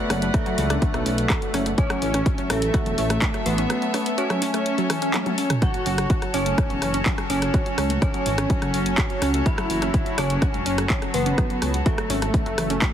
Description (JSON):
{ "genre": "melodic techno", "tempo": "125 BPM", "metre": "4/4", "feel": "straight", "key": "F# minor", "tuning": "A4 = 440 Hz", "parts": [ { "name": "wide unison lead", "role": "melody", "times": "0.0-12.9 s", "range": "A3 to F#4", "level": "-27 LUFS", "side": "equal", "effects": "sidechain pumping, ping-pong delay" }, { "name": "dark detuned synth bell", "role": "second line", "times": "0.0-12.9 s", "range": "A4 to F#5", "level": "-33 LUFS", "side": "right 1 dB", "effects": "chorus, tremolo, sidechain pumping, ping-pong delay" }, { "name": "rich chamber string section", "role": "sustained chords", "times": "0.0-12.9 s", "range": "F#3 to F#5", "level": "-30 LUFS", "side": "left 2 dB", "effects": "sidechain pumping" }, { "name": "wide unison pluck", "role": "arpeggios", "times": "0.0-12.9 s", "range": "E3 to F#4", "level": "-29 LUFS", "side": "equal", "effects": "sidechain pumping, ping-pong delay" }, { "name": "dark detuned saw bass", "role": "bass", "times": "0.1-12.8 s", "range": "E1 to C#2", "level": "-26 LUFS", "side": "equal", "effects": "sidechain pumping" }, { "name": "punchy analog drum machine", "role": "drums", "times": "0.1-12.9 s", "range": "handclaps, hi-hat, rim click, toms", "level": "-28 LUFS", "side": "equal", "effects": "none" }, { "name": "electronic kick drum", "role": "drums", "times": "0.3-12.9 s", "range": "none", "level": "-23 LUFS", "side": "equal", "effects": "overdrive" } ], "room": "light reverb", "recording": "heavily compressed radio sound, multiband compression", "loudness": "-20 LUFS", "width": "side -10 dB against mid", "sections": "0.0-12.9 A section", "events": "drum fill 5.1-5.6", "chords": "0.0 Bm; 1.8 A; 5.6 F#m", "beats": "0.34 0.82 1.30 | 1.78 2.26 2.74 3.22 | 3.70 4.18 4.66 5.14 | 5.62 6.10 6.58 7.06 | 7.54 8.02 8.50 8.98 | 9.46 9.94 10.42 10.90 | 11.38 11.86 12.34 12.82" }